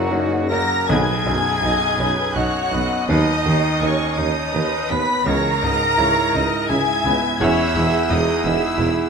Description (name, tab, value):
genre	classical, romantic movement for piano and orchestra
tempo	83 BPM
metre	3/4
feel	uneven beats, rubato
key	B major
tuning	A4 = 440 Hz
part	clear baby grand piano	melody	0.0-9.1 s	B1 to F#4	-22 LUFS	right 1 dB	none
part	warm symphonic violin section	melody	0.0-9.1 s	F#5 to B6	-27 LUFS	left 3 dB	none
part	mellow hollow flute section	second line	0.0-9.1 s	C#5 to B5	-26 LUFS	right 1 dB	none
part	warm cor anglais	second line	0.0-9.1 s	C#4 to B4	-27 LUFS	right 2 dB	none
part	warm symphonic violin section	second line	0.0-9.1 s	A#3 to B5	-26 LUFS	left 5 dB	none
part	clear symphonic viola section	accompaniment	0.0-9.1 s	C#3 to E5	-26 LUFS	right 1 dB	none
part	mellow bassoon	accompaniment	0.0-0.5 s	F#3	-35 LUFS	right 4 dB	none
part	clear trombone section	sustained chords	0.0-7.7 s	C#3 to G#3	-30 LUFS	right 3 dB	none
part	warm French horn section	sustained chords	0.0-7.7 s	B3 to G#4	-28 LUFS	left 6 dB	none
part	mellow trumpet section	stabs	0.0-7.7 s	F#4 to C#5	-33 LUFS	equal	none
part	clear tuba	bass	0.0-8.9 s	E1 to D#2	-28 LUFS	right 4 dB	none
part	rich symphonic cello section	bass	0.0-8.9 s	E2 to F#3	-29 LUFS	right 2 dB	none
part	rich symphonic double bass section	bass	0.0-8.9 s	E1 to F#2	-29 LUFS	right 2 dB	none
part	timpani	percussion	0.9-2.0 s	B2	-28 LUFS	equal	none
room	moderate scoring stage reverb, RT60 1.7 s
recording	close, detailed microphones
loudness	-16 LUFS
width	side -5 dB against mid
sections	0.9-9.1 A section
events	none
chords	0.0 F#; 0.9 B; 3.1 B/D#; 5.3 C#m; 7.4 C#m/E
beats	0.10 | 0.89 1.63 2.36 | 3.09 3.82 4.54 | 5.26 5.99 6.70 | 7.41 8.10 8.79